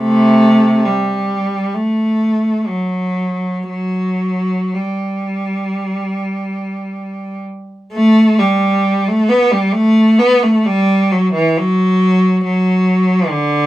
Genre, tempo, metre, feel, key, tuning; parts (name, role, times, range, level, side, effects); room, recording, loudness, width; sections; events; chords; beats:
classical, free, expressive piece for unaccompanied cello; 48-71 BPM; 4/4; rubato; A4 = 440 Hz
clear cello; solo; 0.0-13.7 s; C3 to B3; -12 LUFS; equal
light reverb; -12 LUFS; side -15 dB against mid
0.0-7.9 A section; 7.9-13.7 A section
0.86 1.76 2.69 | 3.70 4.76 5.79 6.82 | 7.93 8.85 9.73 10.66 | 11.57 12.45 13.30